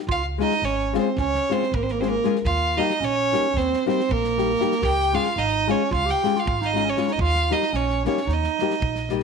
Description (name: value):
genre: balkan folk, Balkan wedding band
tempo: 228 BPM (eighths)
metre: 9/8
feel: straight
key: unclear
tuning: A4 = 440 Hz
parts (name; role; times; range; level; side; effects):
- rich fiddle; melody; 0.1-9.1 s; Bb4 to G5; -24 LUFS; equal; slapback echo
- dark clarinet; second line; 0.1-9.1 s; Bb3 to G4; -26 LUFS; right 13 dB; none
- upright bass; bass; 0.1-9.2 s; Ab1 to Eb2; -27 LUFS; right 1 dB; none
- natural country drum kit; percussion; 0.1-9.2 s; kick drum, snare drum; -33 LUFS; right 1 dB; none
- nylon-string guitar; accompaniment; 0.4-9.2 s; G3 to Ab4; -25 LUFS; left 13 dB; none
room: light reverb, studio reverb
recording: 1960s-style stereo with parts hard left and right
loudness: -20 LUFS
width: side -5 dB against mid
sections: 0.1-9.2 A section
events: none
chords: 0.1 Db; 2.5 Eb; 4.8 Db; 7.2 Eb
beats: | 0.09 0.35 0.61 0.88 1.14 1.41 1.67 1.93 2.20 | 2.46 2.72 2.99 3.25 3.51 3.78 4.04 4.30 4.57 | 4.83 5.09 5.36 5.62 5.88 6.14 6.41 6.67 6.93 | 7.19 7.45 7.71 7.98 8.24 8.50 8.76 9.02